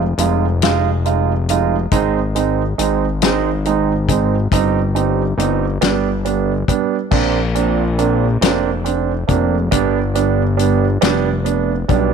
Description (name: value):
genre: six-eight pop ballad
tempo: 46 BPM (dotted quarters)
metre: 6/8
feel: straight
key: unclear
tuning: A4 = 435 Hz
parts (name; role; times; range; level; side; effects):
- fat analog bass; bass; 0.0-12.1 s; F1 to B1; -18 LUFS; left 2 dB; none
- warm concert grand piano; accompaniment; 0.2-12.1 s; G3 to F4; -17 LUFS; right 12 dB; none
- natural country drum kit; drums; 0.2-12.1 s; crash cymbal, hi-hat, kick drum, snare drum; -19 LUFS; left 7 dB; none
room: small room reverb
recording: 1960s-style stereo with parts hard left and right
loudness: -14 LUFS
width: side -6 dB against mid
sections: 0.0-7.1 A section; 7.1-12.1 B section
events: none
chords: 0.0 Fm7; 1.9 Ab; 4.5 Cm/G; 5.8 G; 7.1 Bbadd9; 9.7 G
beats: 0.61 | 1.91 3.21 | 4.51 5.82 | 7.12 8.42 | 9.72 11.02